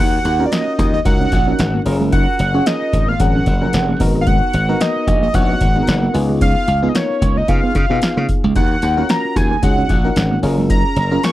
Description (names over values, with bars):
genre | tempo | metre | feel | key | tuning
early-eighties boogie funk | 112 BPM | 4/4 | swing 56% on 16ths | Eb minor | A4 = 441 Hz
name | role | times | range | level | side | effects
fat analog lead | melody | 0.0-11.3 s | Db5 to Db6 | -20 LUFS | equal | chorus, phaser
mellow electric guitar | riff | 0.0-11.3 s | Ab3 to Eb4 | -24 LUFS | right 5 dB | wide subtle chorus
glassy slap bass | bass | 0.0-11.2 s | F1 to Db3 | -18 LUFS | equal | none
electro analog drum machine | drums | 0.2-11.3 s | hi-hat, kick drum, snare drum | -18 LUFS | equal | none
FM electric piano | accompaniment | 0.4-11.3 s | F3 to Db5 | -22 LUFS | left 2 dB | chorus
room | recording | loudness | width
little or no reverb | dry, close 1970s-style studio recording | -13 LUFS | side -15 dB against mid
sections
0.0-11.3 A section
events
none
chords
0.0 Ebm9; 1.9 Gbmaj9; 4.0 Abm9; 6.1 Db9; 8.6 Ebm9; 10.4 Gbmaj9